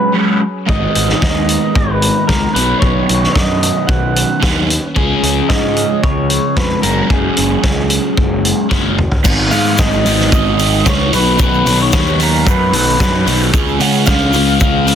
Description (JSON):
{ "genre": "indie rock", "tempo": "112 BPM", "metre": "4/4", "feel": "straight", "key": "G# dorian", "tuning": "A4 = 442 Hz", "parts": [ { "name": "electric guitar through a small old amp", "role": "melody", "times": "0.0-14.9 s", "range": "G#4 to F#5", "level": "-19 LUFS", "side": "right 1 dB", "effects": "spring reverb, tape echo" }, { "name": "lush unison pad", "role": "sustained chords", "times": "0.0-9.2 s", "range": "D#3 to A#5", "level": "-29 LUFS", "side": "equal", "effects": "none" }, { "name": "crunchy overdriven guitar", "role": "riff", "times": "0.0-14.9 s", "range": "G#2 to F#4", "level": "-16 LUFS", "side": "equal", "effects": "phaser" }, { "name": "fuzz picked electric bass", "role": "bass", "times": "0.7-14.9 s", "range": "F#1 to C#3", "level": "-17 LUFS", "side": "equal", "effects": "overdrive" }, { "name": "loose indie drum kit", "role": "drums", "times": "0.7-14.9 s", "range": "crash cymbal, hi-hat, kick drum, snare drum, toms", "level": "-16 LUFS", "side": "equal", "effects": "soft clipping on kick" }, { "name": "egg shaker", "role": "percussion", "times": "9.2-14.9 s", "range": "none", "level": "-29 LUFS", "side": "left 9 dB", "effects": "none" } ], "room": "little or no reverb", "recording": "dense, heavily limited modern master", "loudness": "-11 LUFS", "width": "side -8 dB against mid", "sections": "0.0-9.3 A section; 9.3-14.9 B section", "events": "drum fill 8.7-9.3", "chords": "0.0 F#sus2; 0.7 G#madd9; 2.6 Badd9; 5.0 C#; 6.8 F#sus2; 9.3 G#m; 11.1 B; 13.5 C#" }